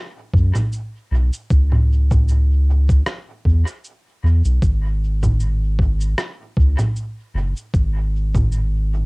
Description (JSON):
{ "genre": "ambient dub", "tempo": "77 BPM", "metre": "4/4", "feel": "swing 56% on 16ths", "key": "G# minor", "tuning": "A4 = 440 Hz", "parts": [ { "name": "soft dub sub bass", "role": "bass", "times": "0.3-9.1 s", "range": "F#1 to F#2", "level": "-16 LUFS", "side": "equal", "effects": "tube saturation" }, { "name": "electronic kick drum", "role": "drums", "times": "0.3-8.5 s", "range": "none", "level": "-17 LUFS", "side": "equal", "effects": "studio ambience, cassette tape" }, { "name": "electronic congas, cabasa and rim click", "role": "drums", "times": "0.6-8.7 s", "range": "none", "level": "-24 LUFS", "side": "equal", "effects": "studio ambience, cassette tape, dub echo" } ], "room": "little or no reverb", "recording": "home recording on cassette", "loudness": "-16 LUFS", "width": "side -33 dB against mid", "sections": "0.0-9.1 A section", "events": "none", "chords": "none" }